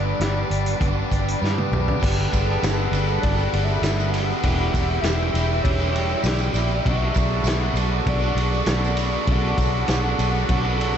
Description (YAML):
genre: rock, shoegaze and dream pop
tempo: 99 BPM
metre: 4/4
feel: straight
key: unclear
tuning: A4 = 439 Hz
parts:
  - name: soft octave-layered synth lead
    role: melody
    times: 0.0-11.0 s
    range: B4 to F#5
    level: -31 LUFS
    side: left 2 dB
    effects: chorus, tape echo
  - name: analog string pad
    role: sustained chords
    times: 0.0-11.0 s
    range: G4 to D6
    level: -31 LUFS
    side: right 2 dB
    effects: ensemble chorus
  - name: biting overdriven guitar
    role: riff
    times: 0.0-11.0 s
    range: E2 to G4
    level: -29 LUFS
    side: left 10 dB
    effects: wide subtle chorus
  - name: crunchy overdriven guitar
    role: riff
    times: 0.0-11.0 s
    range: E2 to G4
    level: -28 LUFS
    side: right 9 dB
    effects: reverse reverb
  - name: vintage muted fingered electric bass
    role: bass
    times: 0.0-11.0 s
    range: E1 to G2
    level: -23 LUFS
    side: equal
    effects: none
  - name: loose indie drum kit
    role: drums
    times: 0.2-10.9 s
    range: crash cymbal, hi-hat, kick drum, ride cymbal, snare drum, toms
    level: -25 LUFS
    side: equal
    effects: none
  - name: tambourine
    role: percussion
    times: 2.0-10.9 s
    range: none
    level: -40 LUFS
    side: right 18 dB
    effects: none
room: light reverb, small room ambience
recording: nothing above 8.0 kHz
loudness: -19 LUFS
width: side -8 dB against mid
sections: 0.0-2.0 A section; 2.0-11.0 B section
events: drum fill 1.4-2.0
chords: 0.0 Em7 (rootless); 2.0 Gmaj9; 4.4 Em7; 6.9 Bm7